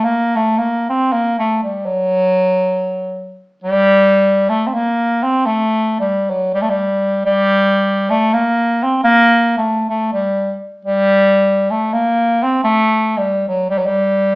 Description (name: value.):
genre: balkan folk.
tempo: free time.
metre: none.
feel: none.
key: unclear.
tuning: A4 = 442 Hz.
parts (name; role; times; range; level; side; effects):
clear bass clarinet; solo; 0.0-14.4 s; F#3 to C4; -13 LUFS; equal; none.
room: wet large studio reverb, RT60 0.8 s.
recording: band playing live in one room, small speaker sound.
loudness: -13 LUFS.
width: side -21 dB against mid.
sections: 0.0-3.6 A section; 3.6-14.4 B section.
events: none.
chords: none.